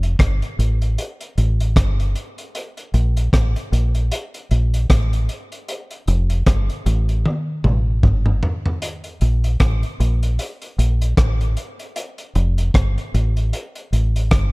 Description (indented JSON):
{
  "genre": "lovers rock reggae",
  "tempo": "76 BPM",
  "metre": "4/4",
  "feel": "swing 57% on 16ths",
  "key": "unclear",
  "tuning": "A4 = 440 Hz",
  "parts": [
    { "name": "deep dub fingered electric bass", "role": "bass", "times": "0.0-14.5 s", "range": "F1 to Bb1", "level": "-17 LUFS", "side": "equal", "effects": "none" },
    { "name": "crunchy breakbeat drum kit", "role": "drums", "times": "0.0-14.5 s", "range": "hi-hat, kick drum, rim click, toms", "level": "-20 LUFS", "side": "equal", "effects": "none" }
  ],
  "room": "little or no reverb",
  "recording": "dark, warm production",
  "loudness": "-17 LUFS",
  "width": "side -27 dB against mid",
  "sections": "0.0-14.5 A section",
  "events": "drum fill 7.3-8.8",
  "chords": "none"
}